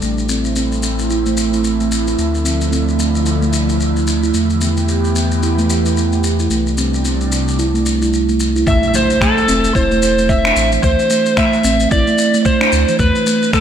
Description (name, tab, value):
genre	organic downtempo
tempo	111 BPM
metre	4/4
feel	swing 59% on 16ths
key	A minor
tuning	A4 = 443 Hz
part	airy breathy pad	sustained chords	0.0-8.7 s	C3 to G4	-20 LUFS	right 1 dB	chorus, phaser, sidechain pumping
part	steel tongue drum	arpeggios	0.0-13.6 s	E3 to E4	-18 LUFS	right 3 dB	digital delay
part	warm sub bass	bass	0.0-13.1 s	E1 to E2	-19 LUFS	left 1 dB	tube saturation
part	electronic shaker and finger snaps	drums	0.0-13.6 s	none	-22 LUFS	left 3 dB	none
part	bronze singing bowl	texture	0.0-8.7 s	none	barely audible	none	none
part	overdriven slide guitar	melody	8.7-13.6 s	A4 to E5	-15 LUFS	equal	digital delay, slapback echo
part	electronic kick drum	drums	8.7-13.6 s	none	-18 LUFS	left 1 dB	none
part	impact	sound effects	8.7-10.8 s	none	-23 LUFS	left 1 dB	none
room	moderate lush hall reverb, RT60 2.5 s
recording	big arena sound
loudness	-13 LUFS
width	side -8 dB against mid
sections	0.0-8.7 A section; 8.7-13.6 B section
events	impact 8.7-10.8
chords	0.0 Am; 2.2 Dm7; 4.3 Em; 6.5 C; 8.7 Am; 10.8 D5; 13.0 E5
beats	| 0.02 0.56 1.10 1.64 | 2.18 2.72 3.27 3.81 | 4.35 4.89 5.43 5.97 | 6.51 7.05 7.59 8.13 | 8.67 9.21 9.75 10.29 | 10.83 11.37 11.91 12.45 | 12.99 13.54